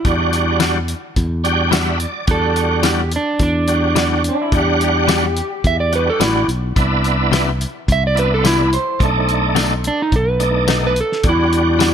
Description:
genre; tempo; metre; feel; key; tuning
straight-eighth soul blues; 107 BPM; 4/4; straight; E minor; A4 = 442 Hz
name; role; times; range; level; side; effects
electric slide guitar; melody; 0.0-11.9 s; D4 to E5; -19 LUFS; right 2 dB; none
bright tonewheel organ; accompaniment; 0.0-11.9 s; G3 to G5; -20 LUFS; right 3 dB; slow rotary speaker, overdrive, chorus vibrato
cloth-damped thuddy drum kit; drums; 0.0-11.9 s; hi-hat, kick drum, snare drum, tambourine; -20 LUFS; equal; none
fingered electric bass; bass; 0.1-11.9 s; A1 to E2; -19 LUFS; equal; none
direct-recorded clean electric guitar; stabs; 0.6-11.9 s; B2 to F#4; -23 LUFS; left 9 dB; tremolo
electric guitar through a small old amp; second line; 4.3-9.7 s; D4 to C5; -23 LUFS; left 1 dB; spring reverb, digital delay
room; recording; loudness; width
light reverb; none; -14 LUFS; side -8 dB against mid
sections
0.0-11.9 A section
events
tonewheel organ fill 1.2-2.3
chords
0.0 Em9; 6.8 Cmaj7; 9.0 B7#9; 11.2 Em9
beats
| 0.05 0.61 1.17 1.73 | 2.29 2.85 3.41 3.96 | 4.53 5.08 5.64 6.21 | 6.76 7.33 7.88 8.45 | 9.01 9.57 10.13 10.69 | 11.25 11.81

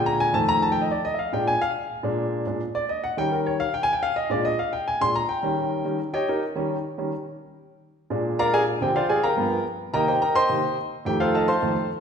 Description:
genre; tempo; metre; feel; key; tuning
jazz; 213 BPM; 4/4; straight; Bb mixolydian; A4 = 441 Hz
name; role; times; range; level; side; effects
warm grand piano; solo; 0.0-11.9 s; F2 to C6; -22 LUFS; equal; none
room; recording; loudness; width
wet recital hall reverb, RT60 1.5 s; recorded in a church or concert hall, nothing above 10.5 kHz; -22 LUFS; side -7 dB against mid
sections
0.9-12.0 A section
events
grand piano solo 0.0-12.0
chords
0.3 F7; 0.9 Bb7; 3.2 Eb7; 4.3 Bb7; 5.4 Eb7; 7.7 Bb7; 8.8 Dm7b5; 9.4 G7#9; 9.9 Cm7; 11.1 F7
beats
0.06 0.34 0.62 | 0.91 1.19 1.47 1.76 | 2.04 2.32 2.61 2.89 | 3.17 3.46 3.74 4.02 | 4.30 4.59 4.87 5.15 | 5.44 5.72 6.00 6.28 | 6.56 6.85 7.13 7.41 | 7.69 7.97 8.25 8.54 | 8.82 9.10 9.38 9.66 | 9.94 10.22 10.50 10.78 | 11.06 11.34 11.62

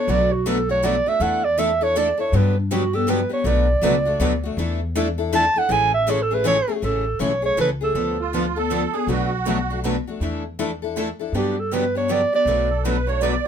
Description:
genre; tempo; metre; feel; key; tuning
acoustic string swing (jazz manouche); 160 BPM; 3/4; swing 62% on 8ths; A major; A4 = 440 Hz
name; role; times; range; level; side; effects
mellow clarinet; melody; 0.0-8.3, 11.4-12.8 s; D4 to A5; -20 LUFS; right 3 dB; none
picked steel-string acoustic guitar; accompaniment; 0.0-13.5 s; B2 to A4; -25 LUFS; left 8 dB; none
picked steel-string acoustic guitar; accompaniment; 0.1-13.3 s; B2 to B4; -28 LUFS; right 6 dB; none
upright bass; bass; 0.1-13.4 s; A1 to G2; -25 LUFS; left 1 dB; none
musette accordion; second line; 8.2-9.8, 12.7-13.5 s; F4 to D5; -25 LUFS; right 7 dB; none
room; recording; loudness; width
light reverb; minimal, uncompressed stereo recording; -18 LUFS; side -8 dB against mid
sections
0.0-6.8 A section; 6.8-13.5 B section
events
clarinet solo 0.0-6.8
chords
0.1 Bm7; 1.2 E7sus4; 2.3 Gmaj7; 3.5 Bm7; 4.6 E7sus4; 5.7 Amaj7; 8.0 Dm6; 9.1 Bm7; 10.2 E7sus4; 11.3 Gmaj7; 12.5 Bm7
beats
| 0.09 0.46 0.83 | 1.21 1.58 1.96 | 2.33 2.71 3.08 | 3.46 3.83 4.21 | 4.58 4.95 5.33 | 5.70 6.08 6.45 | 6.83 7.20 7.58 | 7.95 8.33 8.71 | 9.08 9.46 9.83 | 10.21 10.59 10.96 | 11.34 11.71 12.09 | 12.46 12.84 13.22

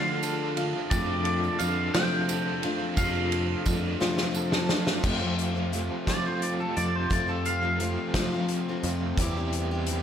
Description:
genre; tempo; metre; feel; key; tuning
folk rock and heartland rock; 58 BPM (dotted quarters); 6/8; straight; F major; A4 = 442 Hz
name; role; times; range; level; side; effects
twangy electric guitar; melody; 0.0-9.1 s; A4 to G5; -31 LUFS; equal; lush chorus, slapback echo
picked steel-string acoustic guitar; accompaniment; 0.0-10.0 s; F2 to G4; -32 LUFS; left 4 dB; none
biting overdriven guitar; riff; 0.0-10.0 s; F2 to A4; -33 LUFS; right 2 dB; tremolo
picked electric bass; bass; 0.0-10.0 s; E2 to F3; -30 LUFS; equal; none
loose indie drum kit; drums; 0.2-10.0 s; crash cymbal, hi-hat, kick drum, ride cymbal, snare drum; -30 LUFS; right 1 dB; none
tambourine; percussion; 0.2-4.8 s; none; -43 LUFS; right 8 dB; none
room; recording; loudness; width
moderate lush hall reverb, RT60 2.0 s; big arena sound; -25 LUFS; side -9 dB against mid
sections
0.0-5.0 A section; 5.0-10.0 B section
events
drum fill 4.0-5.0; clean electric guitar solo 5.0-10.0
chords
0.0 Dm; 0.9 F6; 5.0 F; 9.2 C/E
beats
| 0.92 1.95 | 2.98 4.01 | 5.05 6.08 | 7.12 8.15 | 9.19

